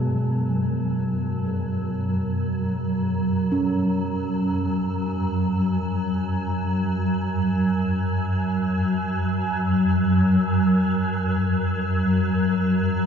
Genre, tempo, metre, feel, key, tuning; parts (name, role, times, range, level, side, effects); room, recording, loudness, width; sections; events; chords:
dark ambient drone; free time; F# minor; A4 = 443 Hz
gamelan-type bossed gongs; arpeggios; 0.0-9.7 s; B2 to C#4; -28 LUFS; right 2 dB; tape echo
swarming drone; drone; 0.0-13.1 s; F#2 to F#3; -21 LUFS; equal; built-in reverb
bronze singing bowl; texture; 0.0-13.1 s; A5; -48 LUFS; left 3 dB
wet huge ambient reverb, RT60 7.8 s; -21 LUFS; side -7 dB against mid
0.0-13.1 A section
0.0 F#m